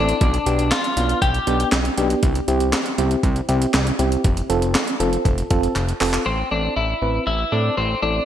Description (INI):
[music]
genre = synth-pop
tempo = 119 BPM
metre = 4/4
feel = straight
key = A minor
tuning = A4 = 440 Hz
[part]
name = twelve-string electric guitar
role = melody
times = 0.0-1.7, 6.3-8.2 s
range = C4 to G4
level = -22 LUFS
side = left 3 dB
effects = digital delay
[part]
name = FM electric piano with auto-pan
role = accompaniment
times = 0.0-8.2 s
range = B3 to B4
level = -23 LUFS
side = right 1 dB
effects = none
[part]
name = fat analog bass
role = bass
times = 0.0-8.2 s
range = F1 to A2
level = -22 LUFS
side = equal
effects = none
[part]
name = breakbeat sampler-style drum kit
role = drums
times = 0.1-6.3 s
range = handclaps, hi-hat, kick drum, snare drum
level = -22 LUFS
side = equal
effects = gated reverb
[sound]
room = moderate lush hall reverb, RT60 1.8 s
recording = bright 1980s-style digital production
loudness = -17 LUFS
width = side -10 dB against mid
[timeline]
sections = 0.0-6.3 A section; 6.3-8.2 B section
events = drum fill 5.8-6.3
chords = 0.2 G/B; 2.2 C; 4.2 F; 6.3 Am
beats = | 0.21 0.72 1.22 1.72 | 2.23 2.73 3.24 3.74 | 4.25 4.75 5.25 5.76 | 6.26 6.77 7.27 7.77